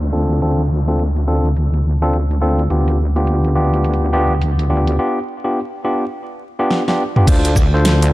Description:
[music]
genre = glitch hop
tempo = 105 BPM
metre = 4/4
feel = swing 61% on 16ths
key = D dorian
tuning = A4 = 439 Hz
[part]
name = wobble bass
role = bass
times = 0.0-8.1 s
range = D2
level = -15 LUFS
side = equal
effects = chorus, tube saturation
[part]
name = dubstep drum kit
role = drums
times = 0.0-8.1 s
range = crash cymbal, hi-hat, rim click, shaker, snare drum, toms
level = -19 LUFS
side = equal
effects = none
[part]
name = downlifter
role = sound effects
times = 0.0-2.7 s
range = none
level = -38 LUFS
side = equal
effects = none
[part]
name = barky tine electric piano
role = stabs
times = 0.1-8.1 s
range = B3 to C5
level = -19 LUFS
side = equal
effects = overdrive, sidechain pumping, digital delay
[part]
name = electronic kick drum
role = drums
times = 7.3-7.7 s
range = none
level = -14 LUFS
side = equal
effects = none
[sound]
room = digital ambience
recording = vinyl crackle, low-pass filter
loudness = -14 LUFS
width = side -17 dB against mid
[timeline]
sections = 0.0-7.3 A section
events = filter sweep 0.0-7.3; break 5.0-7.3; drum fill 6.7-7.3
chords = 0.0 Dm7; 2.7 G7/D; 7.3 Dm7

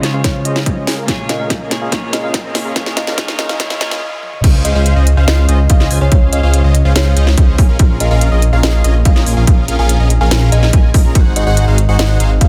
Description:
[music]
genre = future bass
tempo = 143 BPM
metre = 4/4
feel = half-time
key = Bb minor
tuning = A4 = 436 Hz
[part]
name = clean electric guitar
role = accompaniment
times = 0.0-4.0 s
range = Bb2 to Db5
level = -27 LUFS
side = equal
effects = sidechain pumping, dub echo
[part]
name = airy breathy pad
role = sustained chords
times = 0.0-4.0 s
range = Db3 to Bb4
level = -32 LUFS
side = equal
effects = none
[part]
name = big bright polysynth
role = riff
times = 0.0-12.5 s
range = Db4 to Bb5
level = -23 LUFS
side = equal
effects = sidechain pumping
[part]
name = trap drum kit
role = drums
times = 0.0-12.5 s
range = crash cymbal, hi-hat, ride cymbal, snare drum, toms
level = -21 LUFS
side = equal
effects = soft clipping on snare, small room ambience
[part]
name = riser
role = sound effects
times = 0.7-4.0 s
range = none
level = -34 LUFS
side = equal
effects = none
[part]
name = kalimba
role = melody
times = 0.2-12.5 s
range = Db5 to Ab5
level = -26 LUFS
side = equal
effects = sidechain pumping, dub echo
[part]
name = electronic kick drum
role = drums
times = 0.2-12.5 s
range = none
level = -13 LUFS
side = equal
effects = small room ambience
[part]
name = detuned saw bass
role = bass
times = 4.4-12.5 s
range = Ab1 to Db2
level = -14 LUFS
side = equal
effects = chorus, sidechain pumping
[sound]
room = digital ambience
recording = dense, heavily limited modern master, high-pass filter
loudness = -13 LUFS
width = mono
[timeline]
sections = 0.0-4.4 A section; 4.4-12.5 B section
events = build-up 0.0-4.4; drum fill 0.0-4.0, 4.2; filter sweep on analog polysynth 0.0-4.4; filter sweep 0.0-4.4; stop 4.0-4.4; drop 4.4-12.5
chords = 0.0 Dbmaj7; 0.9 Bbm7; 4.4 Dbmaj7; 7.6 Bbm7; 11.2 Ab7

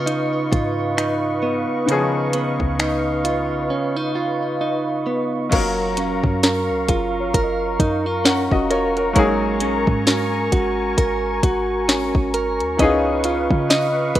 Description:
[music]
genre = contemporary R&B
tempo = 66 BPM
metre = 4/4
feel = swing 58% on 16ths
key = F# major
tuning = A4 = 440 Hz
[part]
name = clear baby grand piano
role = accompaniment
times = 0.0-14.2 s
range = D#3 to F#5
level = -24 LUFS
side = left 3 dB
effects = none
[part]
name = warm analog pad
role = sustained chords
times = 0.0-14.2 s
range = A#4 to C#6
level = -25 LUFS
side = left 2 dB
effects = chorus, sidechain pumping
[part]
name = direct-recorded clean electric guitar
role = arpeggios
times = 0.0-14.2 s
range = C#3 to D#5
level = -21 LUFS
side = right 2 dB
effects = digital delay
[part]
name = clean 808-style bass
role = bass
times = 0.0-14.2 s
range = E#1 to C#3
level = -28 LUFS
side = left 1 dB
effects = none
[part]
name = smooth R&B drum kit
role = drums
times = 0.1-14.2 s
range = crash cymbal, finger snaps, hi-hat, kick drum, snare drum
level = -20 LUFS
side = left 1 dB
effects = vintage 12-bit sampler grit
[part]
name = soft round pluck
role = texture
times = 6.0-13.2 s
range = F#4 to D#5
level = -34 LUFS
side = left 4 dB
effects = none
[sound]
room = light reverb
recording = rough home demo mix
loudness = -17 LUFS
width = side -13 dB against mid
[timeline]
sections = 0.0-5.5 A section; 5.5-14.2 B section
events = break 3.7-5.5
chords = 0.0 C#9; 5.5 F#maj7; 9.2 G#9sus4; 12.8 C#9

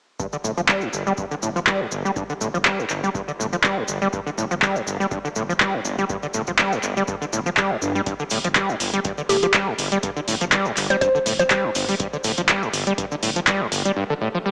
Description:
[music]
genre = acid house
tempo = 122 BPM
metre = 4/4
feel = swing 55% on 16ths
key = unclear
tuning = A4 = 441 Hz
[part]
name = overdriven acid bass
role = riff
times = 0.2-14.5 s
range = G1 to G3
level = -23 LUFS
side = equal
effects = distortion, analog chorus, vintage 12-bit sampler grit, tape echo
[part]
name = electronic kick drum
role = drums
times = 0.2-13.6 s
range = none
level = -32 LUFS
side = equal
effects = none
[part]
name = cabasa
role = percussion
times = 0.2-13.9 s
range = none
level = -31 LUFS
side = equal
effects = none
[part]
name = saturated sub bass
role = bass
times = 0.4-13.9 s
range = G1 to G2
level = -33 LUFS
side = equal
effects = tube saturation, sidechain pumping
[part]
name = electro analog drum machine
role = drums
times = 0.7-13.9 s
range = handclaps, hi-hat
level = -20 LUFS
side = equal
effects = none
[part]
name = hollow square pluck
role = melody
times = 9.3-11.6 s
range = G4 to C5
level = -22 LUFS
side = equal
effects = chorus, tape echo
[sound]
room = moderate lush hall reverb, RT60 1.6 s, digital ambience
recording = small speaker sound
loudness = -19 LUFS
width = side -40 dB against mid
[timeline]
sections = 0.2-14.5 A section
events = break 14.0-14.5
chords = 0.2 G5

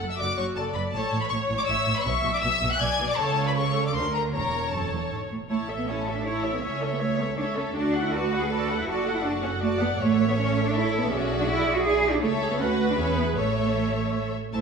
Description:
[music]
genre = quick classical-period movement for string orchestra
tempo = 160 BPM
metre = 3/4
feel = straight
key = A major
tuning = A4 = 440 Hz
[part]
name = rich symphonic violin section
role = second line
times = 0.0-14.6 s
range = E4 to G#5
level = -32 LUFS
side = left 4 dB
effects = none
[part]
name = clear chamber viola section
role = accompaniment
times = 0.0-14.6 s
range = A3 to F#5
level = -30 LUFS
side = equal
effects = none
[part]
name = rich symphonic cello section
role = bass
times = 0.0-14.6 s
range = E2 to A4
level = -28 LUFS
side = right 3 dB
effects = none
[part]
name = rich symphonic double bass section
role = bass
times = 0.0-14.6 s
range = E1 to E2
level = -30 LUFS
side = right 4 dB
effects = none
[part]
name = rich studio violin section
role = melody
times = 0.1-14.6 s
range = C#5 to G#6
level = -31 LUFS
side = left 5 dB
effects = none
[sound]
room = moderate scoring stage reverb, RT60 2.1 s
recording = studio ambience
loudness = -23 LUFS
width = side -5 dB against mid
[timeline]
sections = 0.0-5.5 A section; 5.5-14.5 A section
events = none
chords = 0.0 D/F#; 0.9 A; 2.1 E5/B; 3.2 A/C#; 3.9 Bb/D; 4.3 A/E; 5.1 N.C.; 5.5 A; 6.6 A/C#; 7.8 D; 8.9 D/F#; 10.0 A; 11.1 E7/B; 12.2 A/C#; 12.6 Bm/D; 13.0 E; 13.4 A

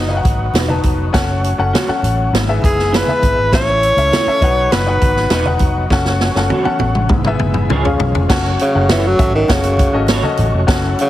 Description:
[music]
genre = uptempo 1960s-style soul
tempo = 101 BPM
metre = 4/4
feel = straight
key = F# dorian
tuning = A4 = 442 Hz
[part]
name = breathy tenor saxophone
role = melody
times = 0.0-11.1 s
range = C#3 to C#5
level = -16 LUFS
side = equal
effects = none
[part]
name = clear baby grand piano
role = accompaniment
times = 0.0-11.0 s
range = G#2 to A5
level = -20 LUFS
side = left 4 dB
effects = none
[part]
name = overdriven tonewheel organ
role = sustained chords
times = 0.0-11.1 s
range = E3 to F#4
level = -26 LUFS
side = equal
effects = slow rotary speaker, chorus vibrato
[part]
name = vintage muted fingered electric bass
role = bass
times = 0.0-10.9 s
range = E1 to C#2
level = -18 LUFS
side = equal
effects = none
[part]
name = congas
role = percussion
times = 0.1-10.5 s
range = none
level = -27 LUFS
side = right 1 dB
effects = none
[part]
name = swinging big-band drum kit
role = drums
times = 0.2-11.1 s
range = crash cymbal, hi-hat, kick drum, snare drum, toms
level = -17 LUFS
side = equal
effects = none
[part]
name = electric guitar through a small old amp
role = stabs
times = 0.5-10.2 s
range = B3 to C#5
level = -24 LUFS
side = right 3 dB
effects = analog chorus
[sound]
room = light reverb, small room reverb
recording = heavily compressed radio sound, multiband compression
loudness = -12 LUFS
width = side -14 dB against mid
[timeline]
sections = 0.0-8.3 A section; 8.3-11.1 B section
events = drum fill 5.9-8.3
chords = 0.0 B; 1.1 F#m; 2.3 E; 3.5 A; 4.4 B; 5.9 F#m; 7.1 E/G#; 7.7 C#; 8.3 F#m

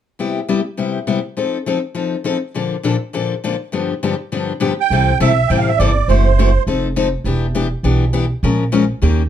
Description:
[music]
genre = acoustic string swing (jazz manouche)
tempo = 204 BPM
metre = 4/4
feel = swing 60% on 8ths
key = C major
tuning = A4 = 441 Hz
[part]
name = picked steel-string acoustic guitar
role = accompaniment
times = 0.2-9.2 s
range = G2 to Bb4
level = -18 LUFS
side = left 5 dB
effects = none
[part]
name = musette accordion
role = melody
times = 4.8-6.6 s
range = C5 to G5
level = -17 LUFS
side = right 10 dB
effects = none
[part]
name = upright bass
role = bass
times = 4.9-9.3 s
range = E1 to Eb2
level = -16 LUFS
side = right 2 dB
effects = none
[sound]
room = moderate studio reverb, RT60 0.5 s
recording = dark, warm production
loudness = -15 LUFS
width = side -10 dB against mid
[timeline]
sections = 0.2-4.9 A section; 4.9-9.3 B section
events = none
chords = 0.2 Cmaj7; 1.4 F7; 2.6 Bbmaj7; 3.7 G7; 4.9 C69; 6.1 F#m7b5; 6.7 F7; 7.3 Em7; 8.4 Bbm7

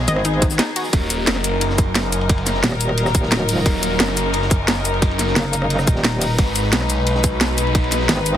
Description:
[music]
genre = dark technical drum and bass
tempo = 176 BPM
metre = 4/4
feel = straight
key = Eb minor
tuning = A4 = 439 Hz
[part]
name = dark studio string section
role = sustained chords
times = 0.0-8.4 s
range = Eb3 to Cb5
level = -23 LUFS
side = left 2 dB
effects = sidechain pumping
[part]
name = phased detuned saw bass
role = bass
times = 0.0-8.1 s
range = Eb1 to Cb2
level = -21 LUFS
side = equal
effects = phaser, overdrive
[part]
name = analog pluck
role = arpeggios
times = 0.1-0.8 s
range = Eb4 to Eb5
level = -24 LUFS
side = left 4 dB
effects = chorus, sidechain pumping, digital delay
[part]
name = metallic wobble bass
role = bass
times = 0.1-0.6, 2.6-8.4 s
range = Eb1 to Ab1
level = -20 LUFS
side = right 1 dB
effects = chorus
[part]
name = crunchy breakbeat drum kit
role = drums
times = 0.1-8.3 s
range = hi-hat, ride cymbal, snare drum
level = -30 LUFS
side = equal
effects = none
[part]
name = drum and bass drum kit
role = drums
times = 0.1-8.4 s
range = hi-hat, rim click, shaker, snare drum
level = -20 LUFS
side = equal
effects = overdrive
[part]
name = electronic kick drum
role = drums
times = 0.4-7.8 s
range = none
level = -17 LUFS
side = equal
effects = overdrive
[sound]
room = light reverb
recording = heavily compressed radio sound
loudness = -16 LUFS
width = side -10 dB against mid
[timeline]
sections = 0.9-8.4 A section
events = drop 0.9-8.4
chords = 0.0 Abm; 0.9 Ebm; 6.4 Abm

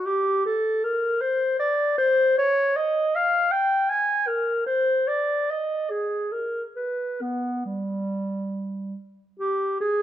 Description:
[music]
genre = classical, baroque-style fantasia for unaccompanied clarinet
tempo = 66-79 BPM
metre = 3/4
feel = rubato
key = unclear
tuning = A4 = 440 Hz
[part]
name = dark clarinet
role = solo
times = 0.0-10.0 s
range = G3 to Ab5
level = -22 LUFS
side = equal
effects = none
[sound]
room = moderate recital hall reverb, RT60 1.6 s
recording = dark, warm production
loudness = -22 LUFS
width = side -11 dB against mid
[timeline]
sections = 0.0-9.4 A section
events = none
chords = none

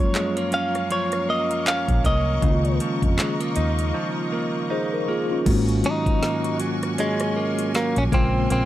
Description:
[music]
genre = contemporary R&B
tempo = 79 BPM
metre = 4/4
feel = swing 58% on 16ths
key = unclear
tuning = A4 = 442 Hz
[part]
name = direct-recorded clean electric guitar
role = melody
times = 0.0-8.7 s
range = Ab3 to F5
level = -26 LUFS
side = equal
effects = analog delay
[part]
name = mellow tine electric piano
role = accompaniment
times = 0.0-8.7 s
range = Db3 to C5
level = -26 LUFS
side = left 1 dB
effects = medium stereo tremolo
[part]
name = clear studio string section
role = sustained chords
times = 0.0-8.7 s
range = Db3 to Db6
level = -32 LUFS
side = left 3 dB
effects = none
[part]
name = direct-recorded clean electric guitar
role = arpeggios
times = 0.0-8.7 s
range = Gb2 to Eb4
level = -27 LUFS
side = right 3 dB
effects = analog delay
[part]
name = smooth R&B drum kit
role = drums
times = 0.1-8.7 s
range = crash cymbal, handclaps, hi-hat, kick drum, rim click, snare drum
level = -24 LUFS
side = equal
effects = none
[part]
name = vintage muted fingered electric bass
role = bass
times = 1.9-8.7 s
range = Ab1 to F2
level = -23 LUFS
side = equal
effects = none
[sound]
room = digital ambience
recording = dry, gritty hardware recording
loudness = -20 LUFS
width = side -14 dB against mid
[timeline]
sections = 0.0-5.5 A section; 5.5-8.7 B section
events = break 3.9-5.5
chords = 0.0 Gbmaj7; 2.4 Db69; 5.5 Ab9sus4; 8.1 Bbm9

